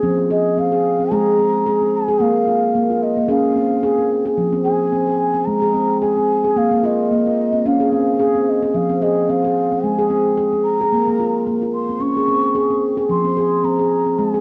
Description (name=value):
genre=world meditative, meditative tuned percussion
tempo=110 BPM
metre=4/4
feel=swing 56% on 16ths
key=F minor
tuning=A4 = 441 Hz
part: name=handpan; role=arpeggios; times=0.0-14.4 s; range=F3 to Ab4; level=-18 LUFS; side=equal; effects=plate reverb
part: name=breathy mellow bansuri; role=melody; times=0.3-14.4 s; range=Eb5 to Db6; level=-24 LUFS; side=equal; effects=cassette tape, plate reverb, analog delay
room=wet booth ambience, RT60 0.2 s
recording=home recording on cassette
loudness=-18 LUFS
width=mono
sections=0.0-4.4 A section; 4.4-14.4 B section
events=none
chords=0.0 Fm; 1.1 Ab; 2.2 Bb5; 3.3 Db; 4.4 Fm; 5.5 Ab; 6.6 Bb5; 7.6 Db; 8.7 Fm; 9.8 Ab; 10.9 Bb5; 12.0 Db5; 13.1 Fm